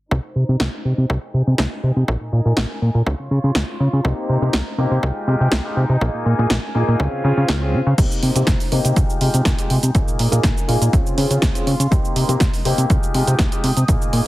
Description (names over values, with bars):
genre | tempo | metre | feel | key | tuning
filtered disco house | 122 BPM | 4/4 | straight | F minor | A4 = 439 Hz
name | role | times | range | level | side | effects
warm studio violin section | sustained chords | 0.1-14.3 s | Ab3 to Eb6 | -30 LUFS | equal | vintage 12-bit sampler grit, sidechain pumping, low-pass filter
plucky analog bass | bass | 0.1-14.2 s | Bb1 to Db3 | -18 LUFS | equal | sidechain pumping, low-pass filter
electronic kick drum | drums | 0.1-14.0 s | none | -20 LUFS | equal | overdrive, high-pass filter on kick, high-pass filter on room
punchy analog drum machine | drums | 0.6-14.2 s | crash cymbal, hi-hat, shaker, snare drum | -23 LUFS | equal | overdrive
bright grand piano | accompaniment | 4.0-14.2 s | Ab3 to Ab4 | -24 LUFS | left 1 dB | phaser, vintage 12-bit sampler grit, sidechain pumping, low-pass filter
room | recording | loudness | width
little or no reverb | heavily compressed radio sound | -16 LUFS | side -17 dB against mid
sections
0.1-8.0 A section; 8.0-14.3 B section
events
filter sweep 0.1-8.0, 8.0-14.3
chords
0.1 Cm7; 1.1 Abmaj7/C; 2.1 Bb7sus4; 3.1 Dbmaj7; 4.0 Cm7; 5.0 Fm9/C; 6.0 Bb7sus4; 7.0 Dbmaj7; 8.0 Cm7; 9.0 Fm9/C; 9.9 Bb7sus4; 10.9 Dbmaj7; 11.9 Cm7; 12.9 Fm9/C